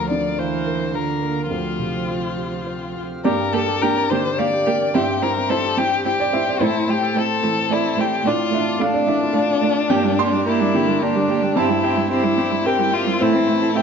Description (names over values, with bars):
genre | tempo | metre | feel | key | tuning
neoclassical piano and strings | 108 BPM | 3/4 | rubato | unclear | A4 = 440 Hz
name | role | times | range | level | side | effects
dark violin | melody | 0.0-13.8 s | D4 to D5 | -21 LUFS | left 6 dB | none
dark cello | second line | 0.0-13.8 s | D3 to C4 | -24 LUFS | right 7 dB | none
dark upright piano | accompaniment | 0.0-13.8 s | D2 to C6 | -22 LUFS | right 1 dB | none
pedal harmonium | sustained chords | 0.0-13.8 s | E3 to F5 | -31 LUFS | right 1 dB | none
concert harp | arpeggios | 0.0-0.3, 3.3-13.8 s | C4 to A5 | -29 LUFS | right 1 dB | tape echo
warm viola | accompaniment | 3.2-13.8 s | C4 to G4 | -28 LUFS | right 3 dB | none
room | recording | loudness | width
moderate large studio reverb, RT60 1.3 s | nothing above 7.9 kHz | -17 LUFS | side -6 dB against mid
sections
0.0-3.2 A section; 3.2-13.8 B section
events
none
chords
0.0 Bb/D; 1.5 Fsus2/D; 3.2 Gm; 4.9 C/G; 6.6 Am; 8.3 Dmadd9/A; 9.9 Gm; 11.6 C/G; 13.2 Am